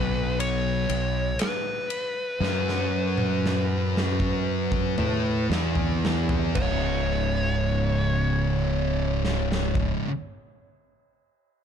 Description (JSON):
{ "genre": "stoner and doom metal", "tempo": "56-60 BPM", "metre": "4/4", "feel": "straight", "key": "C# minor", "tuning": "A4 = 440 Hz", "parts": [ { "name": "fuzz lead guitar", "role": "melody", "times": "0.0-9.9 s", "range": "B4 to C#5", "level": "-30 LUFS", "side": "left 1 dB", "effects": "wah, distortion, tape echo" }, { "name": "thick fuzz guitar", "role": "riff", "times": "0.0-10.1 s", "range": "C#2 to A4", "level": "-29 LUFS", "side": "left 11 dB", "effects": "distortion" }, { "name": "thick fuzz guitar", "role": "riff", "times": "0.0-10.1 s", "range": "C#2 to A4", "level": "-30 LUFS", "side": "right 11 dB", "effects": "distortion" }, { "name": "growling fingered electric bass", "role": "bass", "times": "0.0-9.9 s", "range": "C#1 to A2", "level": "-28 LUFS", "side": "equal", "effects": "overdrive" }, { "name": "big rock drum kit", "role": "drums", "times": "0.4-10.0 s", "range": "crash cymbal, kick drum, ride cymbal, snare drum, toms", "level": "-30 LUFS", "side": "equal", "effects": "none" } ], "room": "light reverb", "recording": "dark, warm production", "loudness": "-23 LUFS", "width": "side -8 dB against mid", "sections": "0.0-6.6 A section; 6.6-10.8 B section", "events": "slowing down 0.0-6.6; drum fill 2.4-6.6", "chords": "0.0 B5; 2.4 F#5; 5.0 Asus2; 5.5 E5; 6.6 C#5" }